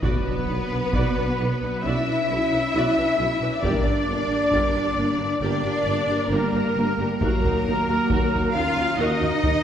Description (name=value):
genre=cinematic, epic orchestral film score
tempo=67 BPM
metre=4/4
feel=straight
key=B harmonic minor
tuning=A4 = 440 Hz
part: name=rich studio violin section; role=melody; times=0.0-9.6 s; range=Bb4 to E#5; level=-31 LUFS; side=left 4 dB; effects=none
part: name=mellow small flute group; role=second line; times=0.0-9.6 s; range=Bb4 to E#5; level=-31 LUFS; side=equal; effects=none
part: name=warm symphonic violin section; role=second line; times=0.0-9.6 s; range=Bb4 to E#5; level=-30 LUFS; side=left 3 dB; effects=none
part: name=warm symphonic viola section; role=accompaniment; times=0.0-9.5 s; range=Bb3 to D5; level=-31 LUFS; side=equal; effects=none
part: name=warm French horn section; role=sustained chords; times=0.0-9.6 s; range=F#3 to C#4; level=-30 LUFS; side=left 2 dB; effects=none
part: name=clear trumpet section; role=stabs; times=0.0-9.6 s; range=Bb4 to E#5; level=-30 LUFS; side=right 1 dB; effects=none
part: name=mellow tuba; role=bass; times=0.0-9.5 s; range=G1 to D#2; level=-31 LUFS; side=right 2 dB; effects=none
part: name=rich symphonic cello section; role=bass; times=0.0-9.6 s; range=Bb3 to E#4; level=-27 LUFS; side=right 1 dB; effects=none
part: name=warm symphonic double bass section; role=bass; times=0.0-9.5 s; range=G1 to D#2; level=-31 LUFS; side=right 2 dB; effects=none
part: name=taiko ensemble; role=drums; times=0.0-9.6 s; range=none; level=-27 LUFS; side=equal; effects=none
part: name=timpani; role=percussion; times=0.0-1.4 s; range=B2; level=-35 LUFS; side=left 1 dB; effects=none
part: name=impact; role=sound effects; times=0.0-3.6 s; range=none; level=-36 LUFS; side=equal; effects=none
room=wet scoring stage reverb, RT60 1.9 s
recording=heard from further back in the room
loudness=-20 LUFS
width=side -9 dB against mid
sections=0.0-9.6 A section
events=impact 0.0-3.7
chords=0.0 Bm; 3.7 Gm; 7.2 D#m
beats=| 0.04 0.94 1.86 2.76 | 3.65 4.54 5.43 6.33 | 7.22 8.10 8.99